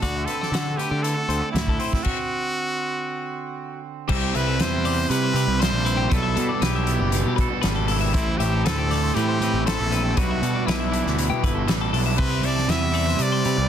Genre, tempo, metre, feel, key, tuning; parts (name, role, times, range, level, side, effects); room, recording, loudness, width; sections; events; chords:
math rock and midwest emo; 118 BPM; 4/4; straight; A4 = 439 Hz
brilliant trumpet; melody; 0.0-13.7 s; E4 to E5; -27 LUFS; equal
twangy electric guitar; accompaniment; 0.0-13.7 s; A2 to B4; -29 LUFS; right 9 dB
twelve-string electric guitar; arpeggios; 0.0-13.7 s; G4 to F#5; -30 LUFS; left 12 dB
fuzz picked electric bass; bass; 0.0-13.7 s; F#1 to D3; -24 LUFS; equal; overdrive
loose indie drum kit; drums; 0.0-13.6 s; crash cymbal, hi-hat, kick drum, snare drum; -26 LUFS; left 1 dB
biting overdriven guitar; riff; 4.1-13.7 s; A2 to E4; -29 LUFS; equal
little or no reverb; dense, heavily limited modern master; -20 LUFS; side -9 dB against mid
0.0-4.1 A section; 4.1-13.7 B section
stop 2.1-4.1
0.0 D7; 4.1 Cmaj9; 6.1 G69; 8.1 Am11; 10.2 Em7/B; 12.2 Cmaj9